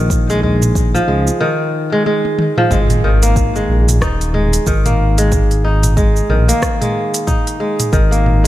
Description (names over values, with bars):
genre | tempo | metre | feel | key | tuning
organic downtempo | 92 BPM | 4/4 | swing 58% on 16ths | unclear | A4 = 440 Hz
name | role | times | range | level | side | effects
kora | arpeggios | 0.0-8.5 s | D#3 to D#4 | -16 LUFS | equal | ping-pong delay
smooth synth bass | bass | 0.0-8.5 s | D#1 to C#2 | -14 LUFS | equal | sidechain pumping
electronic kick drum | drums | 0.1-8.1 s | none | -17 LUFS | equal | none
organic electronic drum kit | drums | 0.1-8.5 s | hi-hat, rim click, shaker, toms | -20 LUFS | right 1 dB | none
udu | percussion | 0.4-0.6 s | none | -26 LUFS | equal | none
impact | sound effects | 2.7-5.3 s | none | -25 LUFS | equal | none
room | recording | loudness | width
digital ambience | none | -12 LUFS | side -14 dB against mid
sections
0.0-2.7 A section; 2.7-8.5 B section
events
drum fill 2.1-2.7; impact 2.7-5.3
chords
0.0 A#7(no3); 2.7 G#5